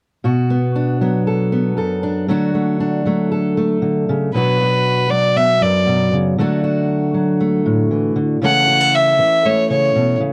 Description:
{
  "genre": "folk",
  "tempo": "117 BPM",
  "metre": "4/4",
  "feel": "straight",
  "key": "B minor",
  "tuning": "A4 = 442 Hz",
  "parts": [
    { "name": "fingerpicked steel-string acoustic guitar", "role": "accompaniment", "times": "0.2-10.3 s", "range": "F#2 to A4", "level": "-18 LUFS", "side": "equal", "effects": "none" },
    { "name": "warm fiddle", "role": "melody", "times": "4.3-10.2 s", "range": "B4 to F#5", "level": "-17 LUFS", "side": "equal", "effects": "none" }
  ],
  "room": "little or no reverb",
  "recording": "dry, close 1970s-style studio recording",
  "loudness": "-17 LUFS",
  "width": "mono",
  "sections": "0.2-4.3 A section; 4.3-10.3 B section",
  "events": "none",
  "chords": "0.2 Bm; 2.3 D; 4.3 Bm; 6.4 D; 8.4 A/C#"
}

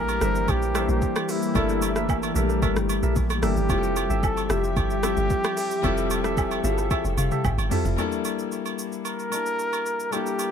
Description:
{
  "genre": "amapiano",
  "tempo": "112 BPM",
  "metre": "4/4",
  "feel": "straight",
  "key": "G dorian",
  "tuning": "A4 = 441 Hz",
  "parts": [
    { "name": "trumpet with bucket mute", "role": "melody", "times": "0.0-10.5 s", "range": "E4 to Bb4", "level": "-28 LUFS", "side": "right 2 dB", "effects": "analog delay" },
    { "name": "dark concert grand piano", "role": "accompaniment", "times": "0.0-10.5 s", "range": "G3 to A5", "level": "-28 LUFS", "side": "left 8 dB", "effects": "none" },
    { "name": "glassy FM pad", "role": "sustained chords", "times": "0.0-8.0 s", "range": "E3 to E5", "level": "-31 LUFS", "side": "left 2 dB", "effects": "ensemble chorus, built-in reverb, sidechain pumping" },
    { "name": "deep log drum bass", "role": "bass", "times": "0.0-8.0 s", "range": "F1 to Bb1", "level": "-27 LUFS", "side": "right 1 dB", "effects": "none" },
    { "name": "smooth R&B drum kit", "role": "drums", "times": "0.1-10.5 s", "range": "hi-hat, kick drum, rim click, shaker, toms", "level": "-29 LUFS", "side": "right 1 dB", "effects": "overdrive, analog delay" },
    { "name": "agogo bells and woodblock", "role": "percussion", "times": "0.1-10.5 s", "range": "none", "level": "-34 LUFS", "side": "right 6 dB", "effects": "analog delay" },
    { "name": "percussive organ stab", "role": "stabs", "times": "0.2-7.9 s", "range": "G4 to E5", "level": "-33 LUFS", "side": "right 6 dB", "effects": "chorus, analog delay" }
  ],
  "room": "little or no reverb",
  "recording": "echo-heavy mix",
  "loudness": "-22 LUFS",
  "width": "side -8 dB against mid",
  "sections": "0.0-8.0 A section; 8.0-10.5 B section",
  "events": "drop 0.0-8.0; grand piano fill 6.4-8.0; drum fill 6.9-8.0",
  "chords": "0.0 Gm69; 3.7 Fmaj9; 8.0 Gm69"
}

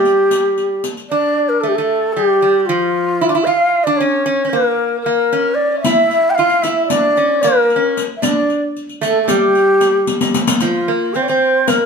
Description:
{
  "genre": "Turkish makam ensemble",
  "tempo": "227 BPM (eighths)",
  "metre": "9/8",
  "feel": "straight",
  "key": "G makam nikriz",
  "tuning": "A4 = 440 Hz",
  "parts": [
    { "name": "breathy mellow ney", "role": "melody", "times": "0.0-11.9 s", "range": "F4 to G5", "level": "-14 LUFS", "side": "left 1 dB", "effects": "none" },
    { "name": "metal-body resonator slide guitar", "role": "second line", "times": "0.0-11.9 s", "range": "F3 to F4", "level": "-18 LUFS", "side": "right 4 dB", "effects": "none" },
    { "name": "riq", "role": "percussion", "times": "0.1-1.0, 5.8-11.8 s", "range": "none", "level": "-20 LUFS", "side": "left 2 dB", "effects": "none" }
  ],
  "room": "moderate studio reverb, RT60 0.8 s",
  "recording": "band playing live in one room",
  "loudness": "-13 LUFS",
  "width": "side -5 dB against mid",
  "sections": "0.0-1.1 A section; 1.1-10.6 B section; 10.6-11.9 C section",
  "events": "drum fill 10.1-10.6",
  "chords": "none"
}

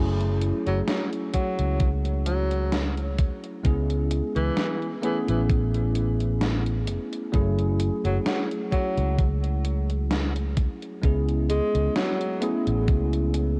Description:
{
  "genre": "vaporwave",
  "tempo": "65 BPM",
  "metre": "4/4",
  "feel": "swing 54% on 16ths",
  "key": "F# minor",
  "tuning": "A4 = 443 Hz",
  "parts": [
    { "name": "bell-like tine electric piano", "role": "accompaniment", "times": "0.0-13.6 s", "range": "F#3 to G#4", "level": "-31 LUFS", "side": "equal", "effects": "analog chorus, tape echo" },
    { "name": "fretless electric bass", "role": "bass", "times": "0.0-13.6 s", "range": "F#1 to C#2", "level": "-27 LUFS", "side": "equal", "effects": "analog chorus" },
    { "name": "gated 80s digital drum machine", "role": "drums", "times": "0.2-13.5 s", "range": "hi-hat, snare drum", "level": "-33 LUFS", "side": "equal", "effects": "gated reverb, gated reverb snare, overdrive" },
    { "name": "breathy tenor saxophone", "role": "melody", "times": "0.7-12.5 s", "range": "E3 to G#3", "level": "-33 LUFS", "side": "equal", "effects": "tape echo" },
    { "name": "electronic kick drum", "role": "drums", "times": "1.3-13.1 s", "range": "none", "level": "-25 LUFS", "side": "equal", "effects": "overdrive" }
  ],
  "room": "light reverb",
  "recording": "worn, warbling old tape, cassette tape, warbly pitch drift",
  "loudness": "-25 LUFS",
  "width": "mono",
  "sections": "0.0-13.6 A section",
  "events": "none",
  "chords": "0.0 F#m7; 3.6 C#m7; 5.0 Amaj9; 7.3 F#m7; 11.0 C#m7; 12.4 Amaj9"
}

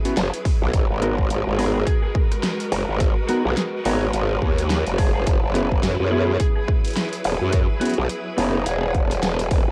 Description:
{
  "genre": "glitch hop",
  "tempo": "106 BPM",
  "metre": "4/4",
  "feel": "swing 58% on 16ths",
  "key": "G# minor",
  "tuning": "A4 = 441 Hz",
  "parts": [
    { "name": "bright studio string section", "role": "sustained chords", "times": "0.0-9.7 s", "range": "F#3 to B4", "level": "-32 LUFS", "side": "equal", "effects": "sidechain pumping, cassette tape" },
    { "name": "mellow electric guitar", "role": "stabs", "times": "0.1-8.6 s", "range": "B3 to A#4", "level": "-29 LUFS", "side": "equal", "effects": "sidechain pumping, cassette tape, tape echo" },
    { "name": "dubstep drum kit", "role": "drums", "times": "0.1-9.6 s", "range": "hi-hat, rim click, snare drum", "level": "-31 LUFS", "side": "equal", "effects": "none" },
    { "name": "growl bass", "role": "bass", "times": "0.2-9.7 s", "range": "E1 to F#2", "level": "-24 LUFS", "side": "equal", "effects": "distortion, chorus, tube saturation" },
    { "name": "electronic kick drum", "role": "drums", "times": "0.5-9.6 s", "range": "none", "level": "-23 LUFS", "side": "equal", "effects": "none" },
    { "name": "lead guitar through a small cranked amp", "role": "melody", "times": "1.6-8.9 s", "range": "D#4 to C#5", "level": "-35 LUFS", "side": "equal", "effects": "overdrive, cassette tape, tape echo" }
  ],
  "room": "light reverb",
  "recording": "home recording on cassette",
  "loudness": "-21 LUFS",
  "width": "mono",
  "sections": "0.0-9.7 A section",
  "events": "none",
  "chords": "0.0 F#9sus4; 0.7 G#m9; 5.3 F#9sus4"
}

